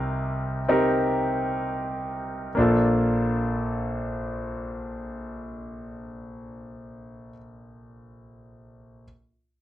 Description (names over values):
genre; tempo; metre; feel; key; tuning
pop; free time; none; none; Bb major; A4 = 440 Hz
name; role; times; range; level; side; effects
clear concert grand piano; solo; 0.0-9.1 s; Bb1 to Bb4; -25 LUFS; equal; none
room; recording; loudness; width
moderate studio reverb, RT60 0.5 s; dry, close 1970s-style studio recording; -23 LUFS; side -13 dB against mid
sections
0.0-2.6 A section; 2.6-6.5 B section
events
slowing down 0.0-2.6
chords
0.0 Cm7; 2.6 Bbmaj7